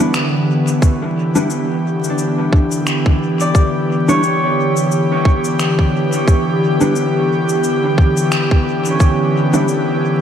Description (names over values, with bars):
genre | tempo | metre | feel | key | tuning
ambient dub | 88 BPM | 4/4 | swing 57% on 16ths | E dorian | A4 = 440 Hz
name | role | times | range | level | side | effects
airy breathy pad | sustained chords | 0.0-10.2 s | D3 to G4 | -16 LUFS | equal | chorus
mellow electric guitar | stabs | 0.0-9.7 s | G3 to B4 | -22 LUFS | equal | ensemble chorus, dub echo
electronic finger snaps and cabasa | drums | 0.1-9.8 s | none | -25 LUFS | left 2 dB | overdrive, dub echo
electronic kick drum | drums | 0.8-9.2 s | none | -13 LUFS | equal | overdrive
concert harp | arpeggios | 2.1-10.2 s | C#4 to D5 | -23 LUFS | right 2 dB | vintage 12-bit sampler grit, dub echo
room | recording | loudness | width
moderate lush hall reverb, RT60 2.4 s | dreamy mix soaked in reverb, vinyl crackle | -13 LUFS | side -9 dB against mid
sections
0.8-10.2 A section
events
none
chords
0.0 Em7